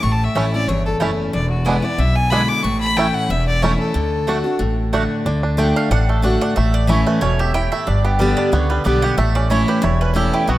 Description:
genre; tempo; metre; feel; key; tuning
bluegrass; 184 BPM; 4/4; swing 54% on 8ths; unclear; A4 = 441 Hz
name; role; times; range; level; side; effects
rich fiddle; melody; 0.0-4.6 s; F#4 to D6; -22 LUFS; left 2 dB; none
picked steel-string acoustic guitar; accompaniment; 0.0-10.6 s; E2 to G4; -20 LUFS; left 1 dB; none
upright bass; bass; 0.0-10.6 s; E1 to D2; -19 LUFS; equal; none
bluegrass banjo; melody; 0.4-10.6 s; G3 to G4; -24 LUFS; right 3 dB; none
mandolin; stabs; 0.4-10.6 s; A3 to A5; -25 LUFS; right 3 dB; none
room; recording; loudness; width
light reverb; rough home demo mix; -15 LUFS; side -15 dB against mid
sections
0.0-5.3 A section; 5.3-10.6 B section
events
mandolin solo 5.3-10.6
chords
0.0 A; 1.3 E7; 2.6 A; 4.0 D; 6.6 A; 7.9 G; 9.2 A

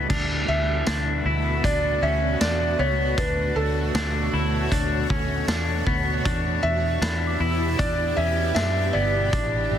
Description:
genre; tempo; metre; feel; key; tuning
dream pop; 78 BPM; 4/4; straight; D major; A4 = 441 Hz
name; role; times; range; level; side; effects
shimmering ambient pad; sustained chords; 0.0-9.8 s; B2 to C#5; -29 LUFS; right 1 dB; chorus, built-in reverb
semi-hollow electric guitar; arpeggios; 0.0-9.8 s; B3 to E4; -27 LUFS; left 3 dB; wide subtle chorus, tape echo
vintage muted fingered electric bass; bass; 0.0-9.8 s; G1 to F#2; -26 LUFS; equal; none
vintage drum kit; drums; 0.1-9.5 s; crash cymbal, hi-hat, kick drum, snare drum, tambourine; -28 LUFS; equal; soft clipping on kick
felt-muted upright piano; melody; 0.5-9.8 s; A4 to E5; -27 LUFS; right 2 dB; tape echo
small celesta; texture; 7.0-9.8 s; B5 to E6; -40 LUFS; right 2 dB; none
room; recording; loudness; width
light reverb, studio reverb; dense, heavily limited modern master; -21 LUFS; side -9 dB against mid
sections
0.1-9.8 A section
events
none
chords
0.1 D6; 6.3 Em7

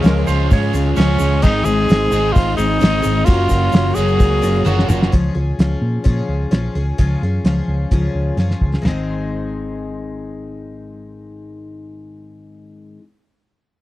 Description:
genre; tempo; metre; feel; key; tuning
folk rock and heartland rock; 129 BPM; 4/4; straight; Ab mixolydian; A4 = 443 Hz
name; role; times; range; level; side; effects
breathy tenor saxophone; melody; 0.0-4.9 s; Db4 to Ab4; -19 LUFS; equal; none
picked twelve-string acoustic guitar; accompaniment; 0.0-13.1 s; Ab2 to Bb4; -24 LUFS; left 3 dB; none
tonewheel organ; sustained chords; 0.0-5.1 s; Gb3 to Ab4; -31 LUFS; right 1 dB; none
overdriven electric guitar; riff; 0.0-5.1 s; Gb2 to Ab4; -21 LUFS; right 1 dB; none
hollow-body short-scale fingered electric bass; bass; 0.0-12.9 s; Gb1 to Bb2; -19 LUFS; equal; none
egg shaker; percussion; 0.0-5.0 s; none; -40 LUFS; right 8 dB; none
clean lap steel guitar; second line; 0.1-0.7 s; Bb4 to Db5; -24 LUFS; right 6 dB; none
cloth-damped thuddy drum kit; drums; 0.1-9.0 s; crash cymbal, hi-hat, kick drum, snare drum, toms; -14 LUFS; equal; none
room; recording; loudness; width
small room ambience; dry, close 1970s-style studio recording; -14 LUFS; side -15 dB against mid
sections
0.0-5.1 A section; 5.1-8.8 B section; 8.8-12.6 C section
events
drum fill 4.7-5.1, 8.4-8.8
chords
0.0 Db; 1.4 Ab; 3.3 Gbmaj7; 5.1 Db; 8.8 Ab

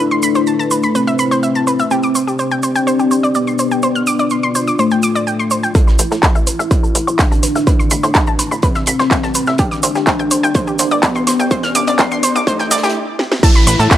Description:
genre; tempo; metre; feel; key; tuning
melodic techno; 125 BPM; 4/4; straight; A minor; A4 = 442 Hz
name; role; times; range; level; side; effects
soft octave-layered synth lead; melody; 0.0-14.0 s; A3 to E4; -18 LUFS; left 2 dB; chorus, phaser, sidechain pumping, analog delay
dark analog pad; sustained chords; 0.0-14.0 s; A3 to D5; -24 LUFS; equal; chorus, sidechain pumping
analog pluck; arpeggios; 0.1-14.0 s; G4 to F6; -18 LUFS; equal; chorus, sidechain pumping, tape echo
tube shaker; percussion; 0.1-14.0 s; none; -24 LUFS; right 3 dB; none
electronic kick drum; drums; 5.8-14.0 s; none; -14 LUFS; equal; distortion
loose indie drum kit; drums; 5.8-14.0 s; hi-hat, snare drum; -29 LUFS; right 2 dB; none
riser and downlifter; sound effects; 8.9-14.0 s; none; -26 LUFS; equal; none
tight sequencer bass; bass; 6.0-13.9 s; G1 to A2; -21 LUFS; equal; sidechain pumping, high-pass filter
techno drum kit; drums; 6.0-14.0 s; crash cymbal, handclaps, hi-hat, snare drum; -17 LUFS; equal; none
room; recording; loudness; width
light reverb, small room ambience; dry, gritty hardware recording, high-pass filter; -12 LUFS; side -12 dB against mid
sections
0.0-5.8 A section; 5.8-13.4 B section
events
build-up 5.8-13.4; filter sweep on synth arpeggio sound 5.8-13.4; filter sweep on soft synth lead 5.8-13.4; filter sweep 5.8-13.4; riser 8.9-13.0; stop 13.0-13.4; drum fill 13.2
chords
0.0 Amadd9; 1.9 Csus2; 5.8 Amadd9; 9.6 Csus2; 13.4 Asus2

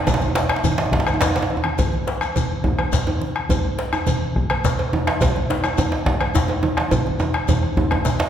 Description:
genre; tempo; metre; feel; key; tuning
west african traditional, West African drum ensemble; 140 BPM (dotted quarters); 12/8; straight; none; none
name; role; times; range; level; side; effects
djembe; percussion; 0.0-8.3 s; none; -23 LUFS; right 2 dB; none
bombo; percussion; 0.1-8.3 s; none; -23 LUFS; left 1 dB; none
congas; percussion; 0.1-8.3 s; none; -26 LUFS; right 3 dB; none
cowbell; percussion; 0.1-8.3 s; none; -30 LUFS; right 2 dB; none
djembe; percussion; 0.1-8.3 s; none; -26 LUFS; left 3 dB; none
shekere; percussion; 0.1-8.3 s; none; -31 LUFS; left 3 dB; none
room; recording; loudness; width
wet scoring stage reverb, RT60 1.6 s; heard from further back in the room; -18 LUFS; side -9 dB against mid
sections
0.0-8.3 A section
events
drum fill 1.2-1.8, 6.9-8.3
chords
none

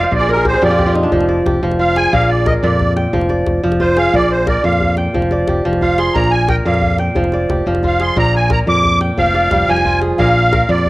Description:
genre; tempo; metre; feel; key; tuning
west african traditional, West African string and xylophone music; 119 BPM (dotted quarters); 12/8; straight; F dorian; A4 = 438 Hz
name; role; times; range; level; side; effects
musette accordion; melody; 0.0-10.9 s; Bb4 to D6; -16 LUFS; right 1 dB; cassette tape
kora; arpeggios; 0.0-10.9 s; Bb2 to G5; -16 LUFS; equal; none
fingered electric bass; bass; 0.0-10.9 s; F1 to F2; -18 LUFS; equal; none
djembe; percussion; 0.1-10.9 s; none; -22 LUFS; left 1 dB; none
room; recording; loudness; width
moderate spring reverb, RT60 2.6 s; home recording on cassette; -12 LUFS; side -19 dB against mid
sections
0.0-10.9 A section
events
kora fill 0.0-1.1; accordion solo 0.0-10.9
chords
0.1 Bb; 1.1 Fm; 2.1 Bb; 3.1 Fm; 4.1 Bb5; 5.1 Fm; 6.2 Bb5; 7.2 Fm; 8.2 Bb; 9.2 Fm; 10.2 Bb

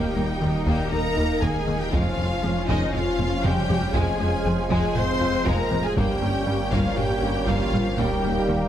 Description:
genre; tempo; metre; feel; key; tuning
cinematic, hybrid orchestral and electronic film score; 119 BPM; 4/4; straight; unclear; A4 = 440 Hz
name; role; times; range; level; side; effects
clear symphonic violin section; melody; 0.0-8.7 s; Eb5 to C6; -31 LUFS; left 2 dB; none
warm symphonic violin section; second line; 0.0-8.7 s; G3 to Eb4; -33 LUFS; left 1 dB; none
warm symphonic viola section; accompaniment; 0.0-8.7 s; Eb4 to C5; -30 LUFS; left 1 dB; none
clear trombone section; sustained chords; 0.0-8.7 s; Eb3 to Db4; -31 LUFS; right 3 dB; none
mellow French horn section; sustained chords; 0.0-8.7 s; Eb3 to C4; -32 LUFS; left 3 dB; none
warm analog pad; sustained chords; 0.0-8.7 s; F3 to F5; -32 LUFS; right 2 dB; lush chorus
thumb-piano-like synth pluck; arpeggios; 0.0-8.6 s; Db3 to G4; -34 LUFS; left 3 dB; none
rubbery square bass; riff; 0.0-8.6 s; Eb2 to G3; -30 LUFS; left 1 dB; none
wide detuned saw bass; bass; 0.0-8.7 s; Eb1 to G1; -33 LUFS; equal; chorus
rich symphonic cello section; bass; 0.2-8.6 s; Eb2 to G2; -31 LUFS; right 2 dB; none
rich symphonic double bass section; bass; 0.2-8.6 s; F1 to Eb2; -30 LUFS; right 2 dB; none
taiko ensemble; drums; 0.7-8.5 s; none; -30 LUFS; equal; none
room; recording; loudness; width
light reverb; close, detailed microphones; -21 LUFS; side -10 dB against mid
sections
0.0-8.7 A section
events
drum fill 3.2-4.0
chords
0.0 Eb; 1.9 Db/F; 4.0 Fm; 6.0 Gdim; 8.0 Eb

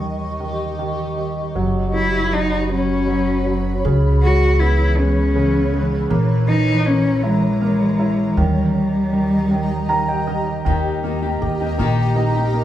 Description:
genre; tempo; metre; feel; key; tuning
six-eight pop ballad; 53 BPM (dotted quarters); 6/8; straight; unclear; A4 = 440 Hz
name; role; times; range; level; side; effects
dark cello; melody; 0.0-10.3 s; G3 to F#4; -20 LUFS; left 1 dB; none
warm grand piano; accompaniment; 0.0-12.6 s; C#3 to A#5; -23 LUFS; right 3 dB; none
granular cloud pad; sustained chords; 0.0-12.6 s; E3 to C#6; -25 LUFS; equal; built-in reverb
upright bass; bass; 0.0-12.6 s; F#1 to D#2; -21 LUFS; equal; none
fingerpicked steel-string acoustic guitar; arpeggios; 10.7-12.6 s; D#3 to G4; -24 LUFS; left 5 dB; none
room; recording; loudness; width
wet large studio reverb, RT60 0.8 s; band playing live in one room; -16 LUFS; side -12 dB against mid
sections
0.0-10.7 A section; 10.7-12.6 B section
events
grand piano fill 9.5-10.7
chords
0.0 D#7; 1.6 F#sus4; 3.8 C#m7; 6.1 A#dim; 8.4 D#

